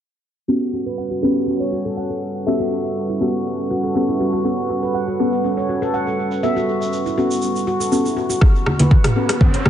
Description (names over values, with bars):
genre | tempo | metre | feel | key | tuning
afro house | 121 BPM | 4/4 | straight | unclear | A4 = 440 Hz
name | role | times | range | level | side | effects
dark analog pad | sustained chords | 0.5-9.7 s | G3 to F#5 | -25 LUFS | right 2 dB | chorus, sidechain pumping
handpan | arpeggios | 0.5-9.7 s | C#4 to F#5 | -23 LUFS | equal | sidechain pumping, low-pass filter, analog delay
deep mellow chord stab | stabs | 0.5-9.7 s | B3 to A4 | -22 LUFS | left 1 dB | chorus, phaser, sidechain pumping, dub echo
tube shaker | percussion | 4.5-8.4 s | none | -32 LUFS | right 5 dB | dub echo
deep house drum kit | drums | 8.4-9.7 s | hi-hat, rim click, toms | -20 LUFS | equal | overdrive, low-pass filter on snare, low-pass filter on toms, low-pass filter on hats, dub echo
electronic kick drum | drums | 8.4-9.5 s | none | -13 LUFS | equal | overdrive
riser | sound effects | 8.8-9.7 s | none | -29 LUFS | right 1 dB | none
congas | percussion | 8.7-9.7 s | none | -19 LUFS | equal | dub echo
room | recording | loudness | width
moderate echo chamber reverb, RT60 1.5 s | echo-heavy mix, low-pass filter, nothing above 10.3 kHz | -17 LUFS | side -10 dB against mid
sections
0.5-8.4 A section; 8.4-9.7 B section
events
filter sweep on handpan 0.5-8.4; filter sweep 0.5-8.4; build-up 8.4-9.7; drum fill 8.4-9.7; riser 8.8-9.7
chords
0.5 Gmaj9#11